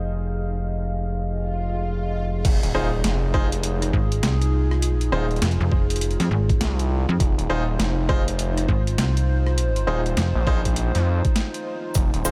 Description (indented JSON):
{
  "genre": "glitch hop",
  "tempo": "101 BPM",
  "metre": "4/4",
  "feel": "swing 62% on 16ths",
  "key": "F minor",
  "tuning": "A4 = 441 Hz",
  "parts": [
    { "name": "dark analog pad", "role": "sustained chords", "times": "0.0-12.3 s", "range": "Eb4 to F6", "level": "-32 LUFS", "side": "equal", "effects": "chorus, phaser, vintage 12-bit sampler grit, sidechain pumping" },
    { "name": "bright grand piano", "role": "stabs", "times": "0.0-12.3 s", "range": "Eb4 to C5", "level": "-33 LUFS", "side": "equal", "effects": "sidechain pumping, tape echo" },
    { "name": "gritty driven synth bass", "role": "bass", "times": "0.0-12.3 s", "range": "Eb1 to F2", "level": "-26 LUFS", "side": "equal", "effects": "none" },
    { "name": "swell and impact", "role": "sound effects", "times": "1.5-4.8 s", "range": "none", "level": "-36 LUFS", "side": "equal", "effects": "none" },
    { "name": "boom bap sampler-style drum kit", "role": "drums", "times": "2.4-12.2 s", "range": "crash cymbal, hi-hat, rim click, snare drum", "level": "-32 LUFS", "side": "equal", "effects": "overdrive" },
    { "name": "electronic kick drum", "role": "drums", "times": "2.4-12.1 s", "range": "none", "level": "-24 LUFS", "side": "equal", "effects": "overdrive" },
    { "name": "slap-like FM bass", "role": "bass", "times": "3.9-10.3 s", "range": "F1 to F2", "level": "-23 LUFS", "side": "equal", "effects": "none" },
    { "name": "cabasa", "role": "percussion", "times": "11.9-12.3 s", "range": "none", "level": "-30 LUFS", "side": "equal", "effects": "none" }
  ],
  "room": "light reverb, digital ambience",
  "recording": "none",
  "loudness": "-22 LUFS",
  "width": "mono",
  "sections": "0.0-2.4 A section; 2.4-12.3 B section",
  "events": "filter sweep on grand piano 0.0-2.4; swell 1.5-2.4; drop 2.4-12.3; impact 2.4-4.8",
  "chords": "0.0 Fm7"
}